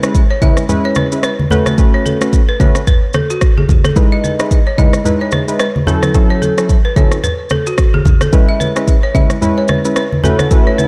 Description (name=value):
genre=afrobeats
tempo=110 BPM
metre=4/4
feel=swing 58% on 16ths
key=unclear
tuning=A4 = 435 Hz
part: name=warm analog keys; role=accompaniment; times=0.0-10.9 s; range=F#3 to B4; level=-19 LUFS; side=equal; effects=chorus
part: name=afro-pop drum kit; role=drums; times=0.0-10.9 s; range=kick drum, rim click, shaker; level=-15 LUFS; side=equal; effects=none
part: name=balafon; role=riff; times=0.3-10.9 s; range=F#4 to E5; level=-22 LUFS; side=equal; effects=digital delay
part: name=congas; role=percussion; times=0.4-10.9 s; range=none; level=-20 LUFS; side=equal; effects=none
part: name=swell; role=sound effects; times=10.1-10.9 s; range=none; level=-29 LUFS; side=equal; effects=none
room=light reverb, digital ambience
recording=dark, warm production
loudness=-13 LUFS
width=mono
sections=0.0-10.9 A section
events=none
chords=0.0 C#m7; 1.5 A69; 4.0 Emaj7; 5.9 F#m7; 8.3 C#m7; 10.2 A69